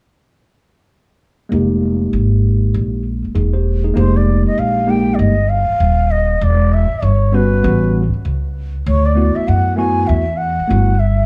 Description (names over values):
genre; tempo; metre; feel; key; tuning
hip hop; 98 BPM; 4/4; swing 63% on 16ths; unclear; A4 = 440 Hz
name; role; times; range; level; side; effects
mellow tine electric piano; accompaniment; 1.5-10.9 s; G3 to C5; -20 LUFS; equal; overdrive, low-pass filter
upright bass; bass; 1.5-11.3 s; Eb1 to F#2; -17 LUFS; equal; none
mellow bansuri; melody; 4.0-11.3 s; B4 to Ab5; -21 LUFS; equal; none
room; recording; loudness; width
small room ambience; none; -15 LUFS; mono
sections
1.5-4.0 A section; 4.0-11.3 B section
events
filter sweep on tine electric piano 1.5-4.0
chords
1.5 Fm11; 6.4 Emadd9; 7.6 A13; 8.9 D69